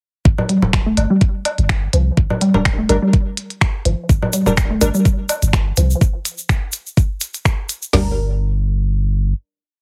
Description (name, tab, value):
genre	minimal techno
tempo	125 BPM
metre	4/4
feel	swing 54% on 16ths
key	G minor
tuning	A4 = 440 Hz
part	punchy sub bass	bass	0.3-9.3 s	D1 to C2	-20 LUFS	equal	tube saturation, sidechain pumping
part	garage drum kit	drums	0.3-8.1 s	hi-hat, kick drum, snare drum, toms	-18 LUFS	equal	overdrive
part	congas and woodblock	percussion	0.4-5.4 s	none	-24 LUFS	equal	overdrive
part	resonant blip pluck	riff	0.5-8.2 s	F3 to A3	-21 LUFS	equal	phaser, sidechain pumping, digital delay
part	minimal click drum kit	drums	0.5-7.8 s	finger snaps, hi-hat	-24 LUFS	equal	none
part	wavetable chord stab	stabs	2.5-4.9, 7.9-9.8 s	G3 to Bb4	-23 LUFS	equal	digital delay
part	egg shaker	percussion	4.1-7.9 s	none	-28 LUFS	equal	none
room	light reverb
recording	heavily compressed radio sound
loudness	-17 LUFS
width	mono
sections	0.3-7.9 groove; 7.9-9.8 final chord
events	none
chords	0.3 G5; 7.9 Gm